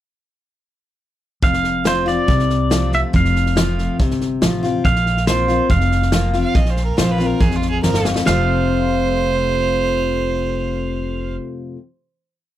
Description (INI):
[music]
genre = honky-tonk and classic country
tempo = 140 BPM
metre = 4/4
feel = straight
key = F major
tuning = A4 = 440 Hz
[part]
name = pedal steel guitar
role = melody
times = 1.4-11.4 s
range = C5 to F5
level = -22 LUFS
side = right 3 dB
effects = none
[part]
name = picked steel-string acoustic guitar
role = accompaniment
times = 1.4-11.8 s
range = F2 to F4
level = -20 LUFS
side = left 3 dB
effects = none
[part]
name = upright bass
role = bass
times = 1.4-11.4 s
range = F1 to C2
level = -21 LUFS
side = equal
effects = none
[part]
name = natural country drum kit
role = drums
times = 1.4-8.4 s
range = hi-hat, kick drum, snare drum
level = -20 LUFS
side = equal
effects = none
[part]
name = clear fiddle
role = second line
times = 6.4-11.3 s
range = F4 to F5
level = -22 LUFS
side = right 6 dB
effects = none
[sound]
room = little or no reverb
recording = dry, close 1970s-style studio recording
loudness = -15 LUFS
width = side -12 dB against mid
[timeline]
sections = 1.4-8.3 verse; 8.3-11.7 final chord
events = drum fill 7.8-8.3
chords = 1.4 F; 4.8 Bbsus2; 8.3 F